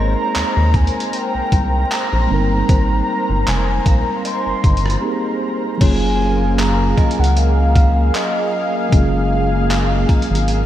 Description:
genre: contemporary R&B.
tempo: 77 BPM.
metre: 4/4.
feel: swing 54% on 16ths.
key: F# major.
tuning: A4 = 440 Hz.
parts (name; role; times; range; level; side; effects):
mellow horn-like synth lead; melody; 0.0-10.3 s; D#5 to B#5; -23 LUFS; equal; chorus, diffuse ambient delay.
mellow tine electric piano; accompaniment; 0.0-10.7 s; F#3 to A#4; -22 LUFS; right 1 dB; medium stereo tremolo.
lush unison pad; sustained chords; 0.0-10.7 s; A#3 to A#5; -24 LUFS; left 1 dB; chorus, sidechain pumping.
rubbery square bass; bass; 0.0-10.7 s; E#1 to D#2; -17 LUFS; equal; none.
synth chime; texture; 0.0-10.7 s; B#4 to A#5; -35 LUFS; left 2 dB; ensemble chorus, tremolo, diffuse ambient delay.
dusty soul sampler-style drum kit; drums; 0.4-10.7 s; crash cymbal, handclaps, hi-hat, kick drum, rim click; -18 LUFS; equal; none.
room: moderate huge ambient reverb, RT60 9.4 s.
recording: dreamy mix soaked in reverb, vinyl crackle.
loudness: -14 LUFS.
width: side -12 dB against mid.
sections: 0.0-5.8 A section; 5.8-10.7 B section.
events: break 5.0-5.8.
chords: 0.0 G#maj9; 5.8 F#maj9.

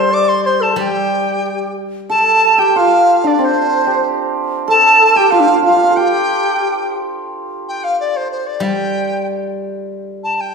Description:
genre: chinese traditional, Chinese chamber ensemble.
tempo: 92 BPM.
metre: 2/4.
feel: rubato.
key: G shang mode.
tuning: A4 = 441 Hz.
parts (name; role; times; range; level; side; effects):
reedy dizi; melody; 0.0-10.5 s; C5 to D6; -14 LUFS; left 1 dB; none.
xiao; second line; 0.0-6.9 s; D4 to D5; -18 LUFS; left 4 dB; none.
steel-string zither; accompaniment; 0.0-2.8, 8.6-10.5 s; G3; -22 LUFS; equal; none.
hammered dulcimer; second line; 2.1-9.2 s; C4 to A4; -16 LUFS; right 7 dB; none.
room: wet recital hall reverb, RT60 1.5 s.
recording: recorded in a church or concert hall.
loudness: -12 LUFS.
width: side -5 dB against mid.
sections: 0.0-7.3 A section; 7.3-10.5 B section.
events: none.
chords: none.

